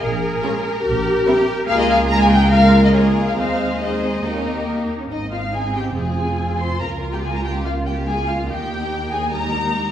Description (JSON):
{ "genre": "quick classical-period movement for string orchestra", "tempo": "142 BPM", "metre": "4/4", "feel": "straight", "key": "Ab major", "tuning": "A4 = 436 Hz", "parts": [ { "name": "warm studio violin section", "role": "melody", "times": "0.0-9.9 s", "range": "Bb4 to C6", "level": "-22 LUFS", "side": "left 2 dB", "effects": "none" }, { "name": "rich studio cello section", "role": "bass", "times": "0.0-9.9 s", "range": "Db2 to Bb4", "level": "-24 LUFS", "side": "right 1 dB", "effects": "none" }, { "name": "warm symphonic double bass section", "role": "bass", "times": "0.0-9.9 s", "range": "F1 to Eb2", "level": "-25 LUFS", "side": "right 2 dB", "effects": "none" }, { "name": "rich studio violin section", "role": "second line", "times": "0.4-9.9 s", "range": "Eb4 to C5", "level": "-27 LUFS", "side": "left 2 dB", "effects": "none" }, { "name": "clear symphonic viola section", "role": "accompaniment", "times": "0.4-9.9 s", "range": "G3 to F4", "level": "-20 LUFS", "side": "right 1 dB", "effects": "none" } ], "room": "wet recital hall reverb, RT60 1.3 s", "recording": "heard from further back in the room", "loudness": "-16 LUFS", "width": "side -10 dB against mid", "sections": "0.0-5.1 A section; 5.1-9.9 B section", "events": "none", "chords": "0.0 Bb7(no3); 0.8 C7(no3)/Bb (rootless); 1.7 Bbm7/Db; 3.4 Ab/Eb; 4.2 Eb; 5.1 Ab; 6.0 Fm; 6.8 Bbm/Db; 8.5 Eb" }